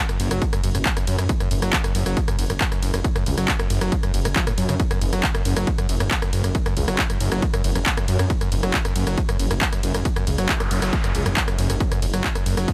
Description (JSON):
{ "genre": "driving peak-time techno", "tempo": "137 BPM", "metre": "4/4", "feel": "straight", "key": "unclear", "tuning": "A4 = 440 Hz", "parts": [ { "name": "screaming distorted acid line", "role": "riff", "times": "0.1-12.7 s", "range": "F#2 to F#3", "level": "-29 LUFS", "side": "equal", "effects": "distortion, chorus, sidechain pumping, dub echo" }, { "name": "techno drum kit", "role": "drums", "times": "0.1-12.7 s", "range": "handclaps, hi-hat, ride cymbal, rim click", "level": "-28 LUFS", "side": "equal", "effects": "overdrive, sidechain pumping on hats, small room ambience, sidechain pumping on cymbals" }, { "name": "detuned saw bass", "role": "bass", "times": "0.2-12.7 s", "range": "F#1 to F#2", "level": "-27 LUFS", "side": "equal", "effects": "sidechain pumping" }, { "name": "electronic kick drum", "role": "drums", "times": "0.4-12.7 s", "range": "none", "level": "-26 LUFS", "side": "equal", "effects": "overdrive, small room ambience" }, { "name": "noise sweep", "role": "sound effects", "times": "10.6-11.8 s", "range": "none", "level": "-35 LUFS", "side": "equal", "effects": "none" } ], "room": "little or no reverb", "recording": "none", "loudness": "-22 LUFS", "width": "mono", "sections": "0.0-12.7 A section", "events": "noise sweep 10.6-11.8", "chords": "0.0 F#5" }